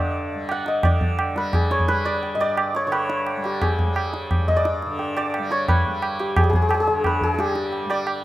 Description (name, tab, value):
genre	indian classical, Hindustani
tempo	174 BPM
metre	4/4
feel	straight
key	unclear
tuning	A4 = 438 Hz
part	santur	melody	0.0-8.2 s	G4 to F#5	-23 LUFS	left 1 dB	none
part	tanpura	drone	0.0-8.2 s	G2 to G3	-29 LUFS	equal	none
part	tabla	percussion	0.5-8.2 s	none	-22 LUFS	right 1 dB	none
room	light reverb, small room ambience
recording	rough home demo mix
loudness	-19 LUFS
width	side -15 dB against mid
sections	0.8-8.2 A section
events	none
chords	none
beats	0.14 0.49 | 0.84 1.19 1.54 1.89 | 2.23 2.58 2.93 3.27 | 3.62 3.96 4.31 4.65 | 5.00 5.34 5.68 6.03 | 6.37 6.71 7.05 7.39 | 7.73 8.07